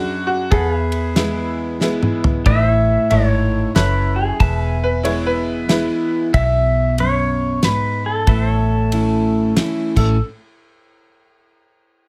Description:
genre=honky-tonk and classic country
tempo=93 BPM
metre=3/4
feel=swing 62% on 8ths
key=A major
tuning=A4 = 441 Hz
part: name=bright upright piano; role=second line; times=0.0-6.2, 10.0-10.2 s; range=F#4 to C#5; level=-26 LUFS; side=equal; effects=none
part: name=picked steel-string acoustic guitar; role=accompaniment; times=0.0-10.2 s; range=E2 to E4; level=-24 LUFS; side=equal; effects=none
part: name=tack piano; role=accompaniment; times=0.0-6.3 s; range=D4 to C#5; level=-29 LUFS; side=equal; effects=none
part: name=pedal steel guitar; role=sustained chords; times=0.0-10.0 s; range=E4 to G#5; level=-30 LUFS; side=equal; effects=none
part: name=vintage muted fingered electric bass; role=bass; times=0.0-10.2 s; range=E1 to E2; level=-22 LUFS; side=equal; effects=none
part: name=damped 70s drum kit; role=drums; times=0.5-10.1 s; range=crash cymbal, kick drum, ride cymbal, snare drum, toms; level=-20 LUFS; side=equal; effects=none
part: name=pedal steel guitar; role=melody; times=2.5-9.5 s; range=G#4 to E5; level=-23 LUFS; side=equal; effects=slapback echo
room=moderate studio ambience, RT60 0.5 s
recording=none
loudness=-18 LUFS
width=mono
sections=0.0-2.5 A section; 2.5-10.2 B section; 10.2-12.1 C section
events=upright piano solo 0.0-2.5; drum fill 1.8-2.5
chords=0.0 D; 0.5 E; 2.5 A; 4.4 E; 8.3 A; 10.2 N.C.

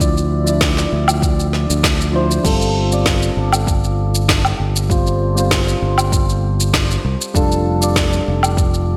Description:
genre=sunset chillout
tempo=98 BPM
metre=4/4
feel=straight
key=unclear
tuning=A4 = 441 Hz
part: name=soft electric-piano-like synth keys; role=accompaniment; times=0.0-9.0 s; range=F3 to E5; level=-23 LUFS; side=equal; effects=chorus, low-pass filter, delay
part: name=fingered electric bass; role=bass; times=0.0-9.0 s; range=F1 to D2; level=-20 LUFS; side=equal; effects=tube saturation
part: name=deep house drum kit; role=drums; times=0.0-8.9 s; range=crash cymbal, shaker, snare drum, woodblock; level=-22 LUFS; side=equal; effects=gated reverb
part: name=electronic kick drum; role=drums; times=0.0-8.7 s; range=none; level=-22 LUFS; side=equal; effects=none
room=moderate lush hall reverb, RT60 1.7 s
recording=bright 1980s-style digital production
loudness=-16 LUFS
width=mono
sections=0.0-2.5 A section; 2.5-9.0 A section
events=filter sweep on synth keys 2.5-9.0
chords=0.0 Dm9; 2.5 G9sus4; 7.3 F69

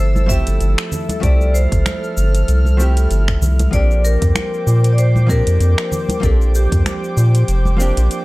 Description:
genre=sunset chillout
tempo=96 BPM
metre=4/4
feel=swing 56% on 16ths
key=Bb lydian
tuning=A4 = 439 Hz
part: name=vibraphone with hard mallets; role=melody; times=0.0-7.8 s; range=G4 to E5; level=-24 LUFS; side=left 1 dB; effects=analog delay
part: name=hollow-body jazz guitar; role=accompaniment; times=0.0-8.2 s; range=F3 to G4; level=-25 LUFS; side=moving between left 4 dB and right 4 dB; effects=auto-pan
part: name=airy breathy pad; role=sustained chords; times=0.0-8.2 s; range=A4 to F6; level=-28 LUFS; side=equal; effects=chorus
part: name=round analog bass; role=bass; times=0.0-8.1 s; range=F1 to Bb2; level=-13 LUFS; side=equal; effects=none
part: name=deep house drum kit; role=drums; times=0.2-8.2 s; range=cabasa, finger snaps, hi-hat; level=-25 LUFS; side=equal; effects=studio reverb
part: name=congas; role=percussion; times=0.2-7.8 s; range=none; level=-26 LUFS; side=right 1 dB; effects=none
part: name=electronic kick drum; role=drums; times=0.3-6.8 s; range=none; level=-19 LUFS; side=equal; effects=studio reverb
room=digital ambience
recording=dry, gritty hardware recording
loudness=-13 LUFS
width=side -20 dB against mid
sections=0.0-8.2 A section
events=none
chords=0.0 Fmaj7; 3.7 Bb69

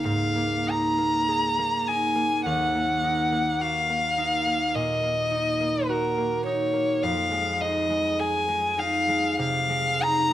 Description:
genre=classical, impressionist duo for violin and harp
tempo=52 BPM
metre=4/4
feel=rubato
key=unclear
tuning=A4 = 442 Hz
part: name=rich violin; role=melody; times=0.0-10.3 s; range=Bb4 to Bb5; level=-24 LUFS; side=left 1 dB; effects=none
part: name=concert harp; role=accompaniment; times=0.0-10.3 s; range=Db2 to Ab4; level=-27 LUFS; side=right 1 dB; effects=none
room=moderate recital hall reverb, RT60 1.8 s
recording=close, detailed microphones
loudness=-22 LUFS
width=side -12 dB against mid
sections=0.0-10.3 A section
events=none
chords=0.0 Dbsus2; 2.5 Ebm; 7.0 Fm7

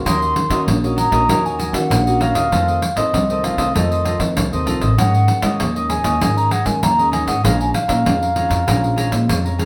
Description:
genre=samba and choro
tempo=98 BPM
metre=4/4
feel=straight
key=Bb minor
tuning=A4 = 441 Hz
part: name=cavaquinho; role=accompaniment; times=0.0-9.7 s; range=Eb4 to Bb5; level=-28 LUFS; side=equal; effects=none
part: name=nylon-string guitar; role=accompaniment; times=0.0-9.7 s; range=F2 to Gb4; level=-27 LUFS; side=equal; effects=none
part: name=upright bass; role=bass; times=0.0-9.7 s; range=A1 to Ab3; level=-22 LUFS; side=equal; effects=none
part: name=baroque flute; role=melody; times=0.1-9.6 s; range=Eb5 to C6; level=-22 LUFS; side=equal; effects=none
part: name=pandeiro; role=percussion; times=0.1-9.7 s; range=none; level=-24 LUFS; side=equal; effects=none
room=wet studio reverb, RT60 0.5 s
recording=band playing live in one room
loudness=-17 LUFS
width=mono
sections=0.0-9.7 A section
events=none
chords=0.1 Ebm7; 2.5 F7; 5.0 Absus4; 7.4 Bbm7

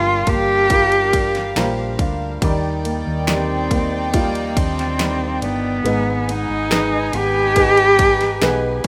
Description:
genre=pop ballad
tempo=70 BPM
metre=4/4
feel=straight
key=Eb major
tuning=A4 = 440 Hz
part: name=warm cello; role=melody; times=0.0-8.9 s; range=Bb3 to G4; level=-20 LUFS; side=equal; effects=plate reverb
part: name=warm studio violin section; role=second line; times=0.0-8.9 s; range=D4 to Ab5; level=-29 LUFS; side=equal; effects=plate reverb
part: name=dark upright piano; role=accompaniment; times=0.0-8.9 s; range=G2 to Bb5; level=-28 LUFS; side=equal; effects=none
part: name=flamenco guitar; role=arpeggios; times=0.0-8.9 s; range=G2 to G4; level=-30 LUFS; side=equal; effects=plate reverb
part: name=hollow-body short-scale fingered electric bass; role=bass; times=0.0-8.9 s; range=G1 to Eb2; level=-28 LUFS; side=equal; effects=none
part: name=pop drum kit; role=drums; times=0.3-8.9 s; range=kick drum, ride cymbal, snare drum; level=-24 LUFS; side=equal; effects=none
room=moderate studio ambience, RT60 0.5 s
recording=rough home demo mix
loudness=-18 LUFS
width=mono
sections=0.0-8.9 A section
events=upright piano fill 1.1-2.4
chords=0.0 Gm7; 2.4 Ebmaj7; 5.8 Abm

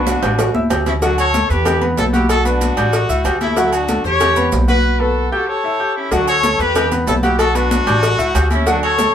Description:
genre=latin, salsa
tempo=188 BPM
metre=4/4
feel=straight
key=D major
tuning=A4 = 439 Hz
part: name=bright horn section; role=melody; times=0.0-9.1 s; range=A3 to C#5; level=-18 LUFS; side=left 2 dB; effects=none
part: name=clear concert grand piano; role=accompaniment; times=0.0-9.1 s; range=F#3 to G6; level=-20 LUFS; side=equal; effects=none
part: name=upright bass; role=bass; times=0.0-9.1 s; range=A1 to E2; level=-20 LUFS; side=right 1 dB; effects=none
part: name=congas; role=percussion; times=0.1-9.1 s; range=none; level=-23 LUFS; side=left 1 dB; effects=none
part: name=cowbell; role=percussion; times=0.1-9.1 s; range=none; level=-24 LUFS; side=left 2 dB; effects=none
part: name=maracas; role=percussion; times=0.1-9.1 s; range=none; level=-32 LUFS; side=right 5 dB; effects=none
part: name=timbales and agogo bells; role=percussion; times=0.1-9.1 s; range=none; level=-24 LUFS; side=right 2 dB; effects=none
room=wet small room reverb, RT60 0.5 s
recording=band playing live in one room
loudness=-13 LUFS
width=side -9 dB against mid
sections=0.0-6.1 A section; 6.1-9.1 A section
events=drum fill 0.0-1.0; break 4.8-6.1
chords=0.4 A7; 1.0 D; 1.7 Em; 2.3 Bm7; 2.9 A7; 3.6 D; 4.2 Em; 4.8 B5; 5.5 A7; 6.1 D; 6.8 Em; 7.4 Bm7; 8.0 A7

